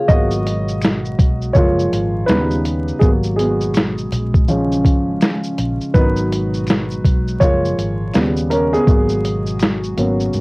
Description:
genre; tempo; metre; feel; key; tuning
lo-fi hip hop; 82 BPM; 4/4; swing 62% on 16ths; G# dorian; A4 = 440 Hz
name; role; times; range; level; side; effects
dark upright piano; accompaniment; 0.0-10.4 s; C#3 to D#5; -18 LUFS; equal; cassette tape, low-pass filter
dark analog pad; sustained chords; 0.0-10.4 s; A#2 to A#4; -26 LUFS; equal; chorus, low-pass filter, cassette tape
vintage muted fingered electric bass; bass; 0.1-10.4 s; F#1 to G#2; -22 LUFS; equal; none
lo-fi sampler-style drum kit; drums; 0.1-10.4 s; hi-hat, kick drum, shaker, snare drum; -16 LUFS; equal; cassette tape
finger snaps; percussion; 0.8-9.8 s; none; -37 LUFS; left 2 dB; none
room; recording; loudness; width
light reverb; home recording on cassette, vinyl crackle; -14 LUFS; side -26 dB against mid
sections
0.0-10.4 A section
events
upright piano solo 0.0-10.4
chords
0.1 G#m7; 1.6 F#maj9; 2.3 D#7b13; 3.0 G#m7; 4.1 A#m7; 5.9 G#m7; 7.4 F#maj9; 8.1 D#7b13; 8.9 G#m7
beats
| 0.09 0.82 1.55 2.29 | 3.02 3.75 4.48 5.21 | 5.94 6.67 7.41 8.14 | 8.87 9.60 10.33

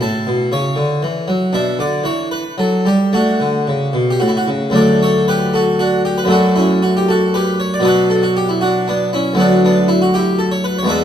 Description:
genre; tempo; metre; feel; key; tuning
classical, baroque-style suite movement for harpsichord; 110-122 BPM; 3/4; rubato; D major; A4 = 440 Hz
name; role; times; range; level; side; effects
harpsichord; solo; 0.0-11.0 s; D2 to A5; -13 LUFS; equal; none
room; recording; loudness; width
wet recital hall reverb, RT60 1.6 s; none; -13 LUFS; side -9 dB against mid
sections
0.0-4.7 A section; 4.7-11.0 A section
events
none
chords
0.0 A; 1.5 G/B; 3.1 D; 4.2 A; 4.7 D; 6.3 D/F#; 7.8 Bm; 9.4 Bm/D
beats
| 0.01 0.51 1.01 | 1.53 2.05 2.58 | 3.13 3.67 4.21 | 4.75 5.27 5.78 | 6.29 6.81 7.32 | 7.84 8.35 8.86 | 9.37 9.87 10.38 | 10.87

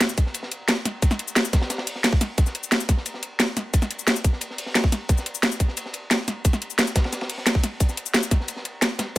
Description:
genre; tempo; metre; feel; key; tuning
drum and bass; 177 BPM; 4/4; straight; none; none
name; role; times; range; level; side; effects
crunchy breakbeat drum kit; drums; 0.0-9.2 s; hi-hat, ride cymbal, snare drum; -32 LUFS; equal; high-pass filter on cymbals, high-pass filter on hats, high-pass filter on snare, high-pass filter on room
drum and bass drum kit; drums; 0.0-9.2 s; cabasa, hi-hat, snare drum; -22 LUFS; equal; overdrive
electronic kick drum; drums; 0.2-9.2 s; none; -20 LUFS; equal; none
room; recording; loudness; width
little or no reverb; none; -21 LUFS; side -16 dB against mid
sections
0.0-9.2 A section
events
none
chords
none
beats
0.01 0.35 0.69 | 1.02 1.36 1.70 2.04 | 2.38 2.72 3.06 3.40 | 3.74 4.08 4.41 4.75 | 5.09 5.43 5.77 6.11 | 6.45 6.79 7.12 7.46 | 7.80 8.14 8.48 8.82 | 9.16

